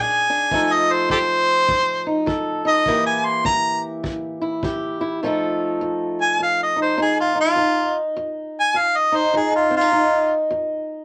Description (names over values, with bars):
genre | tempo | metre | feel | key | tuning
acoustic country blues, solo or duo | 102 BPM | 4/4 | swing 62% on 8ths | F mixolydian | A4 = 440 Hz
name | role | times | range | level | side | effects
clear harmonica | melody | 0.0-10.3 s | F4 to C6 | -20 LUFS | equal | none
fingerpicked swing-style acoustic guitar | accompaniment | 0.0-11.0 s | F2 to A4 | -24 LUFS | equal | none
kick drum | drums | 0.5-4.8 s | none | -33 LUFS | equal | none
room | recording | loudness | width
moderate small room reverb, RT60 0.5 s | none | -20 LUFS | mono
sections
0.0-5.2 A section; 5.2-11.0 A section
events
none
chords
0.0 Bb7; 0.5 F7; 2.9 C7; 5.2 F7